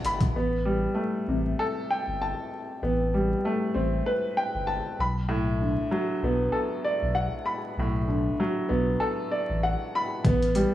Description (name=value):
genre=hip hop, boom-bap hip-hop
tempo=97 BPM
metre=4/4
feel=swing 57% on 16ths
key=A dorian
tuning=A4 = 440 Hz
part: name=warm upright piano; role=accompaniment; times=0.0-10.7 s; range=A2 to B5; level=-26 LUFS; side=equal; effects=high-pass filter, low-pass filter
part: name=sub bass with octave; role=bass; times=0.0-10.7 s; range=G1 to B1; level=-28 LUFS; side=equal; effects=none
part: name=boom bap sampler-style drum kit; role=drums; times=0.0-0.3, 10.2-10.7 s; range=hi-hat, kick drum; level=-25 LUFS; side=equal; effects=overdrive
room=light reverb, digital ambience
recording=vinyl crackle, studio ambience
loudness=-24 LUFS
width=side -13 dB against mid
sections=0.3-10.2 A section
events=none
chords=0.3 Am9; 5.0 Bm7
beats=| 0.35 0.97 1.59 2.21 | 2.82 3.44 4.06 4.68 | 5.30 5.92 6.54 7.15 | 7.77 8.39 9.01 9.63 | 10.25